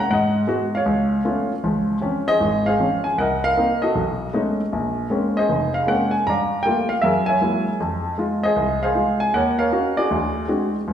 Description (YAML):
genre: solo jazz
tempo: 156 BPM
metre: 4/4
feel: swing 65% on 8ths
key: Db major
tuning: A4 = 444 Hz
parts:
  - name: warm baby grand piano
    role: solo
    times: 0.0-10.9 s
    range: F1 to Bb5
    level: -18 LUFS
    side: equal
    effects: none
room: wet recital hall reverb, RT60 1.3 s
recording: recorded in a church or concert hall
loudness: -18 LUFS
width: side -9 dB against mid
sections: 0.0-1.6 A section; 1.6-10.9 B section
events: none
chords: 0.1 G#m7; 0.9 C#aug7; 1.6 Dbmaj7; 3.2 Cm7b5; 4.0 Cb13; 4.7 Bbm9; 6.3 Gm9; 7.0 Gb9; 7.8 Fm7; 9.3 Ebm7; 10.1 D7#11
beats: | 0.10 0.49 0.87 1.26 | 1.64 2.03 2.41 2.80 | 3.18 3.57 3.95 4.34 | 4.72 5.11 5.49 5.88 | 6.26 6.64 7.03 7.41 | 7.80 8.18 8.57 8.95 | 9.34 9.72 10.10 10.49 | 10.87